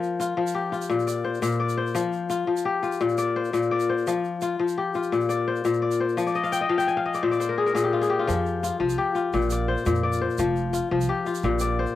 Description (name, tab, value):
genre	west african traditional, West African string and xylophone music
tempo	114 BPM (dotted quarters)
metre	12/8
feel	straight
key	F dorian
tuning	A4 = 439 Hz
part	kora	arpeggios	0.0-12.0 s	Bb2 to Ab5	-23 LUFS	left 4 dB	cassette tape
part	egg shaker	percussion	0.0-11.9 s	none	-41 LUFS	right 9 dB	none
part	upright bass	bass	8.3-11.8 s	F1 to F2	-28 LUFS	right 2 dB	none
room	light reverb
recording	home recording on cassette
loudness	-22 LUFS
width	side -13 dB against mid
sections	0.0-12.0 A section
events	kora fill 6.3-8.3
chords	0.0 F5; 0.9 Bb; 2.0 F5; 3.0 Bb; 4.1 F5; 5.1 Bb; 6.2 F5; 7.2 N.C.; 8.3 F5; 9.3 Bb; 10.4 F5; 11.4 Bb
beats	0.37 0.90 1.43 | 1.95 2.48 3.00 3.53 | 4.06 4.59 5.11 5.64 | 6.17 6.70 7.22 7.75 | 8.28 8.80 9.33 9.86 | 10.38 10.91 11.44